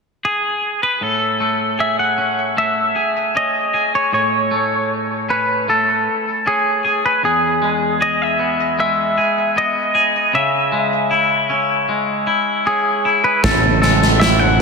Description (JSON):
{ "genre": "post-rock", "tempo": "77 BPM", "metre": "4/4", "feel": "straight", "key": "unclear", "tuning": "A4 = 440 Hz", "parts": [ { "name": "twangy electric guitar", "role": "melody", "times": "0.2-14.6 s", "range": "G#4 to F#5", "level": "-17 LUFS", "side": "equal", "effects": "slapback echo, analog delay" }, { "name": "twangy electric guitar", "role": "arpeggios", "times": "1.0-14.6 s", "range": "E2 to G#4", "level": "-19 LUFS", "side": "left 1 dB", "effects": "slapback echo, analog delay" }, { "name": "modern bright picked electric bass", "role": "bass", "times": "13.4-14.6 s", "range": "A1", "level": "-17 LUFS", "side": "right 1 dB", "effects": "none" }, { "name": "big rock drum kit", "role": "drums", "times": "13.4-14.4 s", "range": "kick drum, snare drum", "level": "-15 LUFS", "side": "right 2 dB", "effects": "none" } ], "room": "wet lush hall reverb, RT60 2.9 s", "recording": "big arena sound", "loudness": "-14 LUFS", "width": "side -4 dB against mid", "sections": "0.0-1.0 A section; 1.0-13.4 B section; 13.4-14.6 B section", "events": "none", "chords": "0.0 N.C.; 1.0 Amaj7; 7.2 Emaj7; 10.3 C#m; 13.4 Amaj7(no3)" }